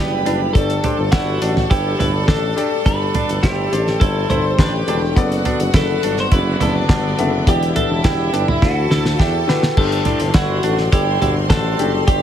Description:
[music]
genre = piano-driven pop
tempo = 104 BPM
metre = 4/4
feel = straight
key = G major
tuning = A4 = 444 Hz
[part]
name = twelve-string electric guitar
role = melody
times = 0.0-12.2 s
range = E4 to C5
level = -22 LUFS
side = equal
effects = digital delay
[part]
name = clear studio violin section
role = second line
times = 0.0-12.2 s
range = C4 to C6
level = -28 LUFS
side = equal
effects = none
[part]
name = warm baby grand piano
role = accompaniment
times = 0.0-12.2 s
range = G2 to E5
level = -23 LUFS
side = left 4 dB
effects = none
[part]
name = warm studio string section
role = sustained chords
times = 0.0-12.2 s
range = D3 to F#4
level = -31 LUFS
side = equal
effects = none
[part]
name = clean electric guitar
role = riff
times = 0.0-11.9 s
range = B3 to E4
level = -28 LUFS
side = right 6 dB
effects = none
[part]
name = warm tuba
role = bass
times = 0.0-12.2 s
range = E1 to E2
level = -21 LUFS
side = equal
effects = none
[part]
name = damped 70s drum kit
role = drums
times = 0.3-12.2 s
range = crash cymbal, handclaps, hi-hat, kick drum, snare drum, toms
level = -17 LUFS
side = equal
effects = none
[sound]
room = light reverb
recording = heavily compressed radio sound, multiband compression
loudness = -14 LUFS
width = side -10 dB against mid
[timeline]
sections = 0.0-9.8 A section; 9.8-12.2 A section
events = drum fill 8.6-9.8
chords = 0.0 Em7; 0.6 Gsus2; 5.2 Bm7/F#; 7.5 Em7; 8.6 Dadd9; 9.8 Gsus2

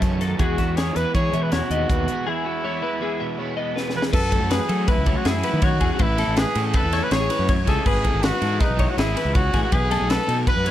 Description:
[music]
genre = math rock and midwest emo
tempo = 161 BPM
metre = 5/4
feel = straight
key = E major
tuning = A4 = 438 Hz
[part]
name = twelve-string electric guitar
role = accompaniment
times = 0.0-6.0 s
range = E2 to G#4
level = -31 LUFS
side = right 8 dB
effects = tremolo, plate reverb
[part]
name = clean electric guitar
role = arpeggios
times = 0.0-10.7 s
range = F#4 to E5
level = -28 LUFS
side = left 5 dB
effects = ensemble chorus, plate reverb
[part]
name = crunchy overdriven guitar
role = riff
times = 0.0-10.7 s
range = B2 to A4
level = -30 LUFS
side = equal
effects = none
[part]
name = fuzz fingered electric bass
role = bass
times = 0.0-10.7 s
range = G#1 to F#3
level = -24 LUFS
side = equal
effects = overdrive
[part]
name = crisp fusion drum kit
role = drums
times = 0.0-10.7 s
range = crash cymbal, hi-hat, kick drum, ride cymbal, snare drum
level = -23 LUFS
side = equal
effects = none
[part]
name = warm trumpet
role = melody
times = 0.4-10.7 s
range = D#4 to C#5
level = -25 LUFS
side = equal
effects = plate reverb
[sound]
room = light reverb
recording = dark, warm production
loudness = -19 LUFS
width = side -12 dB against mid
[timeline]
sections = 0.0-4.1 A section; 4.1-10.7 B section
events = break 2.3-4.1; drum fill 3.8-4.1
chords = 0.4 Emaj9; 4.1 F#m9; 6.0 Amaj7; 7.9 Eadd9/G#; 9.7 B7

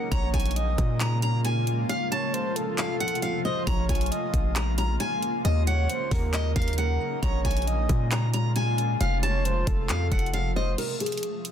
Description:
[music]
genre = hip hop, trap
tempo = 135 BPM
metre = 4/4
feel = half-time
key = Bb minor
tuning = A4 = 440 Hz
[part]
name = fingerpicked steel-string acoustic guitar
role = melody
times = 0.0-11.5 s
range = Ab4 to Bb5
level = -30 LUFS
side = left 2 dB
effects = low-pass filter, digital delay
[part]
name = breathy flute-like synth lead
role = second line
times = 0.0-10.8 s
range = A4 to Eb5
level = -34 LUFS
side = right 4 dB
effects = chorus, tremolo, digital delay
[part]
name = granular cloud pad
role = sustained chords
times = 0.0-10.8 s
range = C3 to F4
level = -32 LUFS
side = equal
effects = built-in reverb
[part]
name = hard-hitting 808-style bass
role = bass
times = 0.1-10.8 s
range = F1 to Bb2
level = -26 LUFS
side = equal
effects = none
[part]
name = trap drum kit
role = drums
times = 0.1-11.5 s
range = crash cymbal, handclaps, hi-hat, kick drum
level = -28 LUFS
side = equal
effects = none
[sound]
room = digital ambience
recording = dense, heavily limited modern master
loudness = -23 LUFS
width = side -9 dB against mid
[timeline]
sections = 0.0-10.8 A section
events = kick muted 1.9-3.7; break 10.8-11.5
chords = 0.1 Bbm7; 1.9 F; 3.7 Bbm7; 5.4 Ebm7; 7.2 Bbm7; 9.0 F; 10.8 N.C.

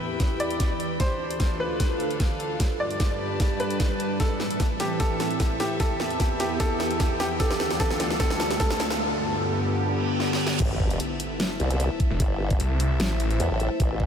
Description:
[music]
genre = heavy wobble dubstep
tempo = 150 BPM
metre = 4/4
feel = swing 53% on 16ths, half-time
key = A minor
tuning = A4 = 440 Hz
[part]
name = evolving wavetable pad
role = sustained chords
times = 0.0-14.1 s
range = D2 to C5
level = -29 LUFS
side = equal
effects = chorus, built-in reverb, sidechain pumping
[part]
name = warm chamber string section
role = texture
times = 0.0-14.1 s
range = D4 to B5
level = -36 LUFS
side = left 1 dB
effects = sidechain pumping
[part]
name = dubstep drum kit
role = drums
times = 0.2-13.9 s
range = crash cymbal, hi-hat, snare drum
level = -31 LUFS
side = equal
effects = high-pass filter on hats, high-pass filter on snare, high-pass filter on cymbals
[part]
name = electronic kick drum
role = drums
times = 0.2-14.1 s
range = none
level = -24 LUFS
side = equal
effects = none
[part]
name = bright grand piano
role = melody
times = 0.4-9.0 s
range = G4 to D5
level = -30 LUFS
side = equal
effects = ping-pong delay
[part]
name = riser, reverse cymbal and sub drop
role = sound effects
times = 7.8-12.2 s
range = none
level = -37 LUFS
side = right 1 dB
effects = none
[part]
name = formant-sweep wobble bass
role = bass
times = 10.6-14.1 s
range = G1 to E2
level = -25 LUFS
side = equal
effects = chorus, overdrive
[part]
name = snarling distorted saw bass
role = bass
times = 12.1-13.4 s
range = E1 to C2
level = -24 LUFS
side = equal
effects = distortion, overdrive
[sound]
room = moderate huge ambient reverb, RT60 8.0 s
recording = dreamy mix soaked in reverb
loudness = -23 LUFS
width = side -8 dB against mid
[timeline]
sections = 0.0-10.6 A section; 10.6-14.1 B section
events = build-up 0.0-10.6; drum fill 0.0-9.0, 10.2-10.6; filter sweep on ambient pad 0.0-10.6; reverse cymbal 9.9-10.6; drop 10.6-14.1; impact 10.6-12.2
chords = 0.0 Em; 1.0 Dm; 2.6 G; 4.2 Amadd9; 5.8 Em; 7.4 Dm; 9.0 G; 10.6 Amadd9

